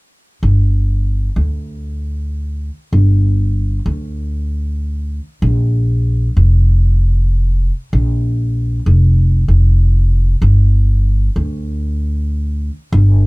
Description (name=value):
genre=folktronica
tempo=96 BPM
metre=4/4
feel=straight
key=G minor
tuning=A4 = 440 Hz
part: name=upright bass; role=bass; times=0.4-13.3 s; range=F1 to D2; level=-12 LUFS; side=equal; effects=none
room=little or no reverb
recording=none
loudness=-13 LUFS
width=side -27 dB against mid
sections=0.4-10.4 A section; 10.4-13.3 B section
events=none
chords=none